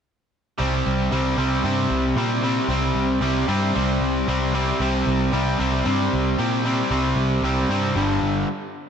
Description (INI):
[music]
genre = rock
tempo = 114 BPM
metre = 4/4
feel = straight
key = unclear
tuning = A4 = 440 Hz
[part]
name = crunchy overdriven guitar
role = riff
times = 0.6-8.5 s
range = G2 to C4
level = -20 LUFS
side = equal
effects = slapback echo
[part]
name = vintage muted picked electric bass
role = bass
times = 0.6-8.4 s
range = G1 to Bb2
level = -24 LUFS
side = equal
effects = none
[sound]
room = moderate lush hall reverb, RT60 2.5 s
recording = big arena sound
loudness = -19 LUFS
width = side -7 dB against mid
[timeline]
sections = 0.6-8.9 A section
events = stop 8.5-8.9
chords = 0.6 C5; 8.0 G5